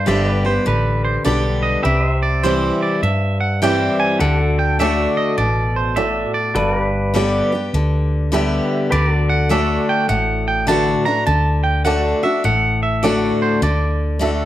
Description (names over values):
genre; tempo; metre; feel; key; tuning
honky-tonk and classic country; 102 BPM; 4/4; swing 64% on 8ths; unclear; A4 = 440 Hz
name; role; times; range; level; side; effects
twangy electric guitar; second line; 0.0-14.5 s; B4 to Bb5; -21 LUFS; right 3 dB; analog delay
picked steel-string acoustic guitar; accompaniment; 0.0-14.5 s; G2 to G4; -20 LUFS; left 3 dB; none
honky-tonk upright piano; accompaniment; 0.1-14.5 s; D4 to E5; -25 LUFS; right 6 dB; none
pedal steel guitar; sustained chords; 0.1-14.5 s; F#4 to E5; -26 LUFS; left 1 dB; none
hollow-body short-scale fingered electric bass; bass; 0.1-14.5 s; G1 to G2; -20 LUFS; equal; none
room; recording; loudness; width
moderate large studio reverb, RT60 0.8 s; none; -15 LUFS; side -13 dB against mid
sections
0.0-14.5 A section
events
clean electric guitar solo 0.0-14.5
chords
0.0 G; 1.8 C; 4.2 D; 6.6 G; 8.9 D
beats
0.07 0.66 1.25 | 1.84 2.43 3.02 3.61 | 4.20 4.79 5.38 5.97 | 6.56 7.15 7.74 8.33 | 8.92 9.51 10.10 10.68 | 11.27 11.86 12.45 13.04 | 13.63 14.22